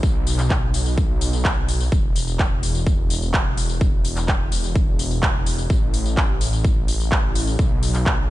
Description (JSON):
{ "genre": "EDM, festival progressive house", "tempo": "127 BPM", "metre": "4/4", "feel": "straight", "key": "unclear", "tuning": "A4 = 440 Hz", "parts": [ { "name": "wide detuned saw bass", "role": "bass", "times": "0.0-8.3 s", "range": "E1 to B1", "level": "-23 LUFS", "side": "equal", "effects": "chorus, sidechain pumping" }, { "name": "big-room dance drum kit", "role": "drums", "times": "0.0-8.2 s", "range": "handclaps, hi-hat, tambourine", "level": "-26 LUFS", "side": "equal", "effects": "overdrive, studio reverb" }, { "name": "electronic kick drum", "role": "drums", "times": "0.0-8.2 s", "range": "none", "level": "-20 LUFS", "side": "equal", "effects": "overdrive, studio reverb" } ], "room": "little or no reverb", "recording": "nothing above 10.4 kHz", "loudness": "-18 LUFS", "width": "side -16 dB against mid", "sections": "0.0-8.3 A section", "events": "none", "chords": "none" }